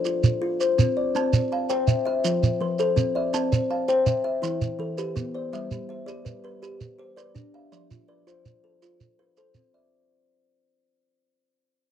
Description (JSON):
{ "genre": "southern african traditional, mbira-style interlocking cycle", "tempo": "110 BPM (dotted quarters)", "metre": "12/8", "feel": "straight", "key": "unclear", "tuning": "A4 = 440 Hz", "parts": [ { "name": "kalimba", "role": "arpeggios", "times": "0.0-10.1 s", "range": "E3 to A5", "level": "-25 LUFS", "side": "left 4 dB", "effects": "none" }, { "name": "shekere", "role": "percussion", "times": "0.0-9.7 s", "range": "none", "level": "-22 LUFS", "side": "right 3 dB", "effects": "none" }, { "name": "kalimba", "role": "arpeggios", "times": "1.2-10.1 s", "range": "E3 to A5", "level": "-31 LUFS", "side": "right 5 dB", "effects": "none" } ], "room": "small room ambience", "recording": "dry, close 1970s-style studio recording", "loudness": "-22 LUFS", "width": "side -10 dB against mid", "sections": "0.0-9.9 A section", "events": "fade-out 0.0-9.9", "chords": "0.0 F; 1.2 C; 2.2 F; 3.3 C; 4.4 Em; 5.5 G; 7.7 F" }